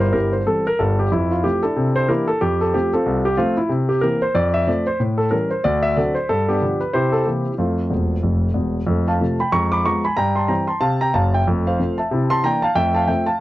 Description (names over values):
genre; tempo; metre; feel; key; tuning
jazz, stride piano; 186 BPM; 4/4; swing 60% on 8ths; F major; A4 = 441 Hz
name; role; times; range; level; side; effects
warm concert grand piano; solo; 0.0-13.4 s; E1 to D6; -17 LUFS; equal; none
room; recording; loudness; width
moderate booth ambience, RT60 0.3 s; cassette tape; -17 LUFS; side -16 dB against mid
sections
0.0-8.9 A section; 8.9-13.4 A section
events
grand piano fill 7.9-8.9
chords
0.0 C/G; 1.1 F; 1.8 C9; 2.4 F; 3.7 C7; 4.4 F; 5.0 A7; 5.7 D7; 6.3 G7; 6.9 C7; 7.6 F; 9.5 Fdim; 10.2 C/G; 11.5 F; 12.1 C13; 12.8 F